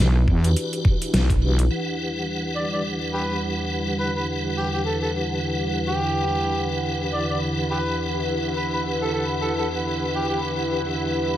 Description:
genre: glitch hop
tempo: 105 BPM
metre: 4/4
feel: swing 57% on 16ths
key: E minor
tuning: A4 = 441 Hz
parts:
  - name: warbly tape-like pad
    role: sustained chords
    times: 0.0-11.4 s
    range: E2 to F#5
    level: -29 LUFS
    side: equal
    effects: chorus, built-in reverb, phaser, vintage 12-bit sampler grit, sidechain pumping
  - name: tonewheel organ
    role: stabs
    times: 0.0-11.4 s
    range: E3 to F#5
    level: -27 LUFS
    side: equal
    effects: chorus vibrato, fast rotary speaker, sidechain pumping, tape echo
  - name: wobble bass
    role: bass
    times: 0.0-1.7 s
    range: B1 to E2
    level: -18 LUFS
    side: equal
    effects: chorus, overdrive
  - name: dubstep drum kit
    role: drums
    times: 0.2-1.7 s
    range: hi-hat, rim click, snare drum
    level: -27 LUFS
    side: equal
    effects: studio reverb
  - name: electronic kick drum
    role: drums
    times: 0.3-1.4 s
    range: none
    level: -20 LUFS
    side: equal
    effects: studio reverb
  - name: airy breathy pad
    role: texture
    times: 2.3-11.4 s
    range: E4 to B4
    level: -30 LUFS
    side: equal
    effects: chorus, sidechain pumping
  - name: overdriven harmonica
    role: melody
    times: 2.6-10.4 s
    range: G4 to D5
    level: -28 LUFS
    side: equal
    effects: vintage 12-bit sampler grit, tape echo
room: light reverb, digital ambience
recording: vinyl crackle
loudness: -21 LUFS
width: side -12 dB against mid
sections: 0.0-1.7 A section; 1.7-11.4 B section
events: band accent 1.1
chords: 0.0 Em9

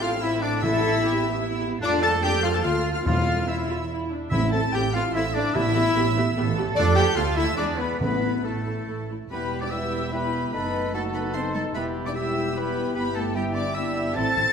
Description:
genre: quick classical-period movement for symphony orchestra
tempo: 147 BPM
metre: 3/4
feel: rubato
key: A minor, E minor from 9.3 s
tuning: A4 = 440 Hz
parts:
  - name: warm studio violin section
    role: melody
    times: 0.0-14.5 s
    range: G5 to A6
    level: -33 LUFS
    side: left 4 dB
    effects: none
  - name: bright clarinet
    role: second line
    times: 0.0-9.1 s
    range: A3 to A4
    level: -31 LUFS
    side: left 2 dB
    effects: none
  - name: clear oboe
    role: second line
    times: 0.0-14.5 s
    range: G4 to A5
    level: -34 LUFS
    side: right 1 dB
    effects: none
  - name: hollow concert flute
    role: second line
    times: 0.0-14.5 s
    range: A4 to A6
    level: -32 LUFS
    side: left 2 dB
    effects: none
  - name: warm studio violin section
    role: second line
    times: 0.0-14.5 s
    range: G4 to A5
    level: -34 LUFS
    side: left 3 dB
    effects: none
  - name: warm studio viola section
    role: accompaniment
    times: 0.0-14.4 s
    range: G3 to A4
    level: -32 LUFS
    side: right 3 dB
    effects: none
  - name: mellow French horn section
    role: sustained chords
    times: 0.0-14.3 s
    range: A3 to A4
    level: -31 LUFS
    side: left 6 dB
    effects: none
  - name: warm trumpet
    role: stabs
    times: 0.0-14.3 s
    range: A3 to A4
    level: -32 LUFS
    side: right 1 dB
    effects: none
  - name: warm studio cello section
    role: bass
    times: 0.0-14.5 s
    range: G3 to A4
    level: -33 LUFS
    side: right 4 dB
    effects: none
  - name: warm studio double bass section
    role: bass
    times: 0.0-14.4 s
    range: E1 to F2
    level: -29 LUFS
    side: right 4 dB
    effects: none
  - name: timpani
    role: percussion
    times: 0.6-8.6 s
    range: E2 to A2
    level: -30 LUFS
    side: equal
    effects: none
  - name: mellow bassoon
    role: accompaniment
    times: 9.7-14.5 s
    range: B3 to G4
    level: -32 LUFS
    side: left 1 dB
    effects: none
room: wet scoring stage reverb, RT60 1.7 s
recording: none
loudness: -22 LUFS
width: side -7 dB against mid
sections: 0.0-9.3 A section; 9.3-14.5 B section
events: none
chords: 0.0 Am; 0.6 Em/A; 1.8 Dm/F; 2.6 Dm; 3.1 Am/E; 3.9 Dsus2/E; 4.3 Am; 5.5 Em/A; 6.8 Dm/F; 7.2 Dm; 7.6 E7; 8.0 A5; 9.3 Em; 10.5 B7/F#; 11.8 Em; 13.0 Em/G

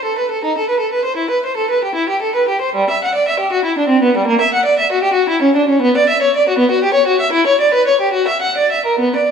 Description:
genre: classical, baroque-style suite movement for unaccompanied violin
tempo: 66-81 BPM (dotted quarters)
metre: 6/8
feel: rubato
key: E minor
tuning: A4 = 440 Hz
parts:
  - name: rich violin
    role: solo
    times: 0.0-9.3 s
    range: G3 to F#5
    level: -12 LUFS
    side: equal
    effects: none
room: moderate recital hall reverb, RT60 1.8 s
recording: small room ambience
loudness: -12 LUFS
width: side -6 dB against mid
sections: 0.0-9.3 A section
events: none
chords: none

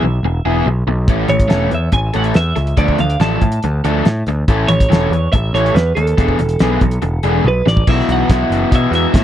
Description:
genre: indie rock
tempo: 141 BPM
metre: 4/4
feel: straight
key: A major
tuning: A4 = 440 Hz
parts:
  - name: raw garage guitar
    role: riff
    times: 0.0-9.2 s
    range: E3 to A4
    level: -17 LUFS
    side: left 2 dB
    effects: overdrive
  - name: overdriven picked electric bass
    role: bass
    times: 0.0-9.2 s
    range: E1 to B2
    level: -17 LUFS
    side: equal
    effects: none
  - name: cloth-damped thuddy drum kit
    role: drums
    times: 1.1-9.2 s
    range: crash cymbal, hi-hat, kick drum, snare drum, toms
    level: -14 LUFS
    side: equal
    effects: none
  - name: twelve-string electric guitar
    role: melody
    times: 1.3-9.2 s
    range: A4 to A5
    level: -20 LUFS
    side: right 3 dB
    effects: warbly pitch drift, tape echo
room: little or no reverb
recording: dry, close 1970s-style studio recording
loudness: -12 LUFS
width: side -11 dB against mid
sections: 0.0-7.9 A section; 7.9-9.2 B section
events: drum fill 7.5-7.9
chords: 0.0 E; 1.1 A; 2.8 Dm; 4.5 A; 6.2 E7sus4; 7.9 Bsus4

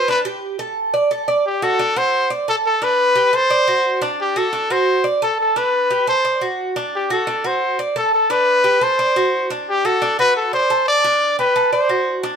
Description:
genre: latin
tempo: 175 BPM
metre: 4/4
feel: straight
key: unclear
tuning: A4 = 440 Hz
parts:
  - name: clear trumpet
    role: melody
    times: 0.0-12.2 s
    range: G4 to D5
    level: -16 LUFS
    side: left 1 dB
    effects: none
  - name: Cuban tres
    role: arpeggios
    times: 0.0-12.4 s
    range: D4 to D5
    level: -20 LUFS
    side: right 2 dB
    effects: none
room: wet stone room reverb, RT60 1.1 s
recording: band playing live in one room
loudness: -15 LUFS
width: side -7 dB against mid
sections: 0.0-1.4 A section; 1.4-12.4 B section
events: trumpet solo 0.0-1.4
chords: 0.1 Gsus2/D; 0.8 D5; 1.4 Dadd11; 2.1 D; 2.8 Am11/D; 3.5 D7; 4.9 D; 5.6 Am11/D; 6.2 D; 8.3 Am11/D; 9.0 D7; 11.0 Gadd9/D; 11.7 D

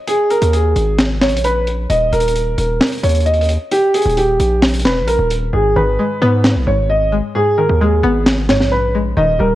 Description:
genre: hip hop, trap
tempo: 132 BPM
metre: 4/4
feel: half-time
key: G# harmonic minor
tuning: A4 = 440 Hz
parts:
  - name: dark grand piano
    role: melody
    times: 0.1-9.6 s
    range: G4 to D#5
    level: -16 LUFS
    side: right 1 dB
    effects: none
  - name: crunchy breakbeat drum kit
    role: drums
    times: 0.1-8.7 s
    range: handclaps, hi-hat, snare drum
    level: -18 LUFS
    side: equal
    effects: none
  - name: distorted 808-style bass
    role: bass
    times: 0.4-9.6 s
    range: D#1 to G#2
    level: -17 LUFS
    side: equal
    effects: distortion
  - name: string-like resonator pluck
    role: accompaniment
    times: 5.5-9.6 s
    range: G#2 to B3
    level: -19 LUFS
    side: left 1 dB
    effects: chorus
room: light reverb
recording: worn, warbling old tape, cassette tape, warbly pitch drift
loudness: -12 LUFS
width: side -14 dB against mid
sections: 0.0-9.6 A section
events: hi-hats muted 5.5-9.6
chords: 0.0 G#5; 1.9 D#5; 5.5 G#m

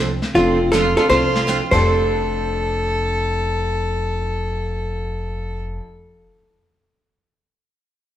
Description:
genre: country, western swing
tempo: free time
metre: none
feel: none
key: F major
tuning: A4 = 440 Hz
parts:
  - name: picked steel-string acoustic guitar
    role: accompaniment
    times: 0.0-5.8 s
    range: F3 to A4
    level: -27 LUFS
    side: right 5 dB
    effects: none
  - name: upright bass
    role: bass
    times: 0.0-5.8 s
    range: F1 to C2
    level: -24 LUFS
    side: equal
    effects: none
  - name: vintage brush drum kit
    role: drums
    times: 0.2-1.8 s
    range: brushed snare drum, crash cymbal, hi-hat, kick drum, snare drum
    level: -26 LUFS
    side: left 1 dB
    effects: none
  - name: clear upright piano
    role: accompaniment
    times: 0.3-5.8 s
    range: F2 to A4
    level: -28 LUFS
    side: left 2 dB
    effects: none
  - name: archtop guitar, miked and amplified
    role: melody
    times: 0.4-5.8 s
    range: F4 to C5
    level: -18 LUFS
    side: equal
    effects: none
  - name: bright fiddle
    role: second line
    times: 0.4-5.6 s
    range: C4 to A4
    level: -24 LUFS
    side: left 1 dB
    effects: none
room: wet large studio reverb, RT60 1.4 s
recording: band playing live in one room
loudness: -17 LUFS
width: side -11 dB against mid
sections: 0.3-1.9 A section; 1.9-4.9 B section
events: drum fill 1.1-1.9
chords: 0.3 F6

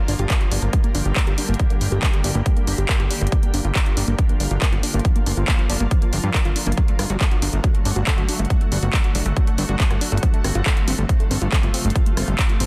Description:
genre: uplifting trance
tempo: 139 BPM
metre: 4/4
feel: straight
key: G minor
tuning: A4 = 440 Hz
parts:
  - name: unison pluck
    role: arpeggios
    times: 0.1-12.7 s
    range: F3 to Bb4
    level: -32 LUFS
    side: equal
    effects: sidechain pumping, dub echo
  - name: fat analog bass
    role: bass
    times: 0.1-12.7 s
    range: G1 to G2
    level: -24 LUFS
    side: equal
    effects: tube saturation, sidechain pumping
  - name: big-room dance drum kit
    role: drums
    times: 0.1-12.7 s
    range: handclaps, hi-hat, rim click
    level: -28 LUFS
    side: equal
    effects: none
  - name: electronic kick drum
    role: drums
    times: 0.3-12.5 s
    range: none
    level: -21 LUFS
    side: equal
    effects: none
room: light reverb, digital ambience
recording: dense, heavily limited modern master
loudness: -20 LUFS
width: mono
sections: 0.0-12.7 A section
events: none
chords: 0.0 Gm; 3.3 Bb/G; 6.8 D/G; 10.2 F/G

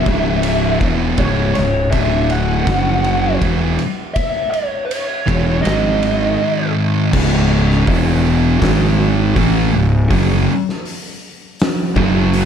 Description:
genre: stoner and doom metal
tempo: 81 BPM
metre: 4/4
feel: straight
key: C# minor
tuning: A4 = 440 Hz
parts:
  - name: fuzz lead guitar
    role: melody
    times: 0.0-6.7 s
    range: C#5 to F#5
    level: -20 LUFS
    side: equal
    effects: wah, distortion, slapback echo
  - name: thick fuzz guitar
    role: riff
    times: 0.0-12.5 s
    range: C#2 to A3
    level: -20 LUFS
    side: left 9 dB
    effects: distortion
  - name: thick fuzz guitar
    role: riff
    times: 0.0-12.5 s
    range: C#2 to A3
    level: -19 LUFS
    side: right 9 dB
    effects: distortion
  - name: fuzz fingered electric bass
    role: bass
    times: 0.0-12.5 s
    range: C#1 to A1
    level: -18 LUFS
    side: equal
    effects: overdrive
  - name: oversized low-tuned drum kit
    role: drums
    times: 0.1-12.5 s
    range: crash cymbal, hi-hat, kick drum, ride cymbal, snare drum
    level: -21 LUFS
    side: equal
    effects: none
room: small room ambience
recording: dark, warm production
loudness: -13 LUFS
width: side -8 dB against mid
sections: 0.0-7.1 A section; 7.1-12.5 B section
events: none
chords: 0.1 C#m; 1.9 D5; 2.7 F#5; 3.4 C#m; 5.7 G#5; 7.1 C#5; 7.9 E5; 8.6 G#5; 9.4 C#m

